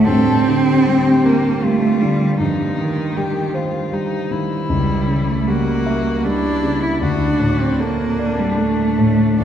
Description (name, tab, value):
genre	classical, slow romantic movement for piano trio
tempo	78 BPM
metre	3/4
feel	rubato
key	G minor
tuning	A4 = 440 Hz
part	rich cello	second line	0.0-9.4 s	Eb3 to E4	-17 LUFS	right 2 dB	none
part	dark concert grand piano	accompaniment	0.0-9.4 s	C#2 to E5	-19 LUFS	left 1 dB	none
part	warm violin	melody	0.1-9.4 s	D4 to A4	-25 LUFS	left 5 dB	none
room	wet cathedral reverb, RT60 4.5 s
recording	recorded in a church or concert hall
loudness	-15 LUFS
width	side -9 dB against mid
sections	0.1-9.4 A section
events	none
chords	0.1 Gm; 2.4 Cm/G; 4.7 C#dim7; 7.0 D